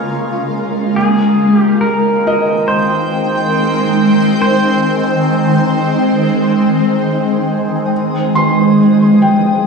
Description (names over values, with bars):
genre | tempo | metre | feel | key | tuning
ambient | 69 BPM | 4/4 | straight | unclear | A4 = 440 Hz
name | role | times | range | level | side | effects
pedal steel guitar | melody | 0.0-7.0 s | Ab4 to Db5 | -19 LUFS | right 2 dB | diffuse ambient delay
shimmering ambient pad | sustained chords | 0.0-9.7 s | Db3 to G5 | -12 LUFS | equal | chorus, built-in reverb, phaser
felt-muted upright piano | arpeggios | 0.0-9.7 s | Eb5 to C6 | -20 LUFS | left 1 dB | diffuse ambient delay
warm studio violin section | texture | 7.9-9.7 s | Eb6 | -40 LUFS | right 1 dB | none
room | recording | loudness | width
wet scoring stage reverb, RT60 2.2 s | studio reverb | -11 LUFS | side -4 dB against mid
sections
0.0-7.9 A section; 7.9-9.7 B section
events
none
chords
0.0 Bbm7; 1.0 Abmaj7; 7.9 Db